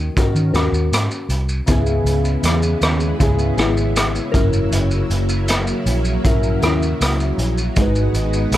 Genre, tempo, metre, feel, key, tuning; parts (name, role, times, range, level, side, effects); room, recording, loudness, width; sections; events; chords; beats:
indie pop, bedroom pop; 79 BPM; 4/4; straight; C# dorian; A4 = 440 Hz
nylon-string guitar; accompaniment; 0.0-8.6 s; C#3 to B4; -23 LUFS; left 2 dB; analog chorus, warbly pitch drift
vintage muted fingered electric bass; bass; 0.0-8.6 s; F#1 to D#3; -19 LUFS; equal
raw garage drum kit; drums; 0.2-8.6 s; hi-hat, kick drum, rim click, shaker; -20 LUFS; equal
string machine, violins; sustained chords; 1.7-8.6 s; C#3 to F#4; -25 LUFS; equal; ensemble chorus
light reverb; -15 LUFS; side -13 dB against mid
0.0-8.6 A section
0.0 D#m7; 1.7 C#m7; 4.3 F#7; 7.8 G#m7
0.16 0.92 | 1.68 2.44 3.20 3.96 | 4.72 5.48 6.24 7.00 | 7.76 8.52